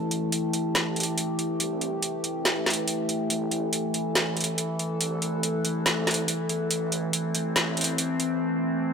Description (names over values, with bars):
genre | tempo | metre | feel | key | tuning
deep dubstep | 141 BPM | 4/4 | swing 55% on 16ths, half-time | A minor | A4 = 439 Hz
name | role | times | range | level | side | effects
overtone-sweeping drone | sustained chords | 0.0-8.9 s | E3 to A4 | -27 LUFS | equal | chorus, built-in reverb
dark detuned saw bass | bass | 0.0-8.4 s | A1 to E2 | -41 LUFS | equal | none
garage drum kit | drums | 0.1-8.3 s | hi-hat, snare drum | -25 LUFS | right 1 dB | overdrive
room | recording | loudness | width
light reverb | dry, gritty hardware recording | -24 LUFS | side -6 dB against mid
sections
0.0-8.9 A section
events
build-up 0.0-8.9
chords
0.0 A5